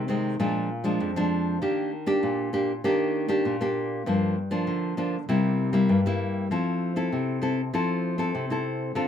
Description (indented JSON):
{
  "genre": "samba",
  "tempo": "98 BPM",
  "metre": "4/4",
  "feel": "straight",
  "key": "unclear",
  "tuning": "A4 = 440 Hz",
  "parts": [
    { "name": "nylon-string guitar", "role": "solo", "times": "0.0-9.1 s", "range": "F2 to A4", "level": "-24 LUFS", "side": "left 1 dB", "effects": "none" }
  ],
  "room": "moderate small room reverb, RT60 0.5 s",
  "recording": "none",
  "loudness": "-24 LUFS",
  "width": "side -8 dB against mid",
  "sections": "0.0-9.1 A section",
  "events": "none",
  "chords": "0.4 Bb7; 1.6 Ebmaj7; 4.1 Gm7; 5.3 C7; 6.5 Fmaj7"
}